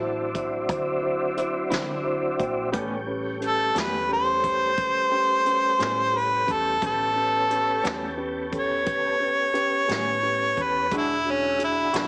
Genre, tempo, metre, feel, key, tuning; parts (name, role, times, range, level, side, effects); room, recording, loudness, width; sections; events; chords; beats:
slow blues; 59 BPM (dotted quarters); 12/8; straight; A mixolydian; A4 = 440 Hz
dark upright piano; accompaniment; 0.0-12.1 s; C#4 to C6; -33 LUFS; equal
tonewheel organ; sustained chords; 0.0-12.1 s; D3 to A4; -34 LUFS; equal; chorus vibrato, slow rotary speaker
vintage muted fingered electric bass; bass; 0.0-12.1 s; E1 to D3; -41 LUFS; equal
jazz brush drum kit; drums; 0.3-12.1 s; hi-hat, kick drum, snare drum; -36 LUFS; equal
electric guitar through a small old amp; accompaniment; 1.7-12.1 s; A2 to F#4; -35 LUFS; equal; tremolo
clear harmonica; melody; 3.5-12.1 s; C#4 to C#5; -25 LUFS; equal; overdrive
moderate studio reverb, RT60 0.9 s; heavily compressed radio sound, small speaker sound; -24 LUFS; mono
0.0-12.1 A section
upright piano fill 1.7-2.7
0.0 D9; 2.7 A9; 10.9 E9
0.69 1.71 | 2.73 3.76 4.78 5.80 | 6.82 7.84 8.87 9.89 | 10.91 11.93